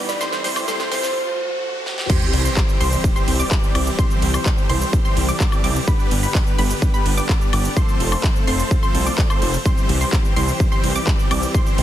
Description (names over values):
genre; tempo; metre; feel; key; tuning
EDM, festival progressive house; 127 BPM; 4/4; straight; C major; A4 = 440 Hz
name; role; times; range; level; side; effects
kalimba; melody; 0.0-1.1 s; A4 to D5; -27 LUFS; right 1 dB; tape echo
fingerpicked plugged-in steel-string acoustic guitar; accompaniment; 0.0-1.1 s; B2 to C5; -35 LUFS; right 3 dB; sidechain pumping, tape echo
warm studio string section; sustained chords; 0.0-11.8 s; D3 to C5; -32 LUFS; left 2 dB; none
wide unison pluck; arpeggios; 0.0-11.8 s; B5 to D6; -28 LUFS; right 1 dB; sidechain pumping, tape echo
big supersaw lead; riff; 0.0-11.8 s; D3 to D5; -25 LUFS; equal; sidechain pumping, tape echo
riser and sub drop; sound effects; 0.0-4.0 s; none; -29 LUFS; equal; none
big-room dance drum kit; drums; 0.1-11.8 s; cabasa, crash cymbal, handclaps, hi-hat, ride cymbal, snare drum, woodblock; -26 LUFS; right 1 dB; high-pass filter on snare, high-pass filter on perc, high-pass filter on hats, high-pass filter on cymbals
electronic kick drum; drums; 2.1-11.6 s; none; -18 LUFS; equal; none
wide detuned saw bass; bass; 2.3-11.8 s; F1 to C2; -21 LUFS; equal; chorus, sidechain pumping
room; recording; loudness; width
light reverb; dense, heavily limited modern master, high-pass filter; -16 LUFS; side -12 dB against mid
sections
0.0-2.1 A section; 2.1-11.8 B section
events
build-up 0.0-2.1; drum fill 0.0-1.2, 1.9; riser 0.0-2.1; drop 2.1-11.8; impact 2.1-4.0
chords
0.2 F; 2.1 C; 5.9 G; 7.8 F; 9.7 C